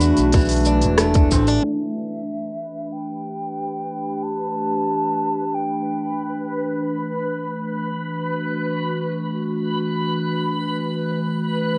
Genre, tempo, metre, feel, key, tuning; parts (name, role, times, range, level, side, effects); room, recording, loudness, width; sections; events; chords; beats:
folktronica; free time; E minor; A4 = 440 Hz
hollow concert flute; melody; 0.0-6.5 s; E5 to B5; -30 LUFS; equal; vintage 12-bit sampler grit, cassette tape, analog delay, plate reverb
warbly tape-like pad; sustained chords; 0.0-11.8 s; E3 to G4; -26 LUFS; equal; chorus, built-in reverb
picked swing-style acoustic guitar; arpeggios; 0.0-2.2 s; E2 to F#4; -27 LUFS; equal; analog delay, plate reverb
overdriven fingered electric bass; bass; 0.0-1.6 s; E1 to E2; -23 LUFS; equal
organic electronic drum kit; drums; 0.0-1.6 s; hi-hat, rim click, shaker; -26 LUFS; equal; cassette tape
electronic kick drum; drums; 0.3-1.4 s; -19 LUFS; equal; cassette tape
backwards swelling texture; texture; 3.5-11.8 s; B4 to B5; -31 LUFS; equal; built-in reverb, plate reverb
wet studio reverb, RT60 0.6 s; home recording on cassette, low-pass filter, nothing above 10.3 kHz; -23 LUFS; mono
0.0-1.6 A section; 1.6-11.8 B section
band accent 1.0-1.3; filter sweep on ambient pad 1.6-11.8; filter sweep 1.6-11.8
0.0 D6; 1.6 Em; 6.9 D6/E
free time